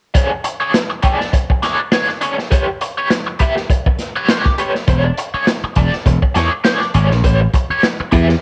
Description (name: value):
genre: funk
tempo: 102 BPM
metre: 4/4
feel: swing 56% on 16ths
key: unclear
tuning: A4 = 440 Hz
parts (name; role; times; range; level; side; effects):
- overdriven electric guitar; accompaniment; 0.1-8.3 s; D4 to E5; -21 LUFS; equal; wah, tremolo, cassette tape
- crunchy breakbeat drum kit; drums; 0.1-8.4 s; hi-hat, kick drum, snare drum; -19 LUFS; equal; cassette tape
- slap bass; bass; 4.9-8.3 s; E1 to E2; -16 LUFS; equal; none
room: light reverb, small room ambience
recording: home recording on cassette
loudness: -16 LUFS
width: mono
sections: 0.1-8.4 A section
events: none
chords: 0.1 C#5; 2.5 G; 4.9 E6; 7.2 A9